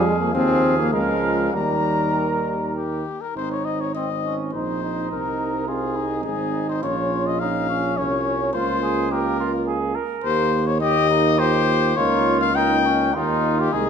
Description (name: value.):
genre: classical, brass quintet.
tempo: 104 BPM.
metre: 3/4.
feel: rubato.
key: Ab major.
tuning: A4 = 440 Hz.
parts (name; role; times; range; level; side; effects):
warm trumpet; melody; 0.0-13.9 s; Eb4 to Bb5; -23 LUFS; left 8 dB; none.
warm flugelhorn; second line; 0.0-13.9 s; C4 to Bb4; -26 LUFS; right 7 dB; none.
clear French horn; accompaniment; 0.0-13.9 s; G3 to G4; -27 LUFS; left 2 dB; none.
clear euphonium; accompaniment; 0.0-13.9 s; Eb3 to Db4; -28 LUFS; right 5 dB; none.
warm tuba; bass; 0.0-13.9 s; Ab1 to F2; -26 LUFS; right 2 dB; none.
room: wet recital hall reverb, RT60 1.3 s.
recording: minimal, uncompressed stereo recording.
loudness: -19 LUFS.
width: side -7 dB against mid.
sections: 0.0-3.4 A section; 3.4-13.9 B section.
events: none.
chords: 0.0 Fm; 0.9 Bbm/Db; 1.5 Eb; 3.4 Ab; 5.1 Ab/C; 6.8 Bbm; 8.5 Bbm/Db; 10.2 Eb; 12.0 Eb7/Db.